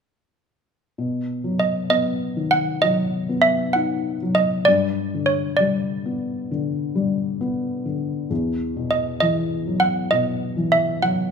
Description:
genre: children's music, lullaby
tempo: 66 BPM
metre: 4/4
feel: rubato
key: unclear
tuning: A4 = 441 Hz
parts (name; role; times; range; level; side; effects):
- felt-muted upright piano; accompaniment; 1.0-11.3 s; E2 to D#4; -23 LUFS; left 3 dB; none
- malleted handbells; melody; 1.6-11.3 s; C#5 to F#5; -19 LUFS; right 2 dB; none
room: moderate recital hall reverb, RT60 1.6 s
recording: minimal, uncompressed stereo recording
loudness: -19 LUFS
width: side -6 dB against mid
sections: 1.0-11.3 A section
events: none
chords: 1.0 B; 4.7 G; 8.3 Esus2

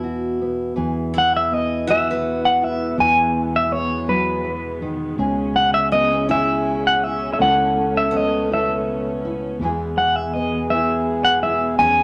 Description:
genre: acoustic folk-pop ballad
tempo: 54 BPM (dotted quarters)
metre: 6/8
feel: straight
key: unclear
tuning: A4 = 439 Hz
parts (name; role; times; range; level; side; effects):
- clean electric guitar; melody; 0.0-12.0 s; B4 to G#5; -21 LUFS; equal; harmonic tremolo
- mellow French horn; second line; 0.0-12.0 s; E4 to A4; -30 LUFS; equal; none
- nylon-string guitar; accompaniment; 0.0-12.0 s; B2 to A4; -29 LUFS; equal; none
- picked steel-string acoustic guitar; arpeggios; 0.0-12.0 s; B3 to B4; -32 LUFS; equal; none
- fretless electric bass; bass; 0.0-12.0 s; C#2 to E2; -30 LUFS; equal; none
- warm chamber string section; sustained chords; 0.8-12.0 s; B2 to C#4; -33 LUFS; equal; none
room: wet small room reverb, RT60 0.5 s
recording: none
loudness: -20 LUFS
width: mono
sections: 0.8-12.0 A section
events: none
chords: 0.0 Eadd9; 0.8 E; 5.2 C#m; 7.4 A/C#; 9.6 E

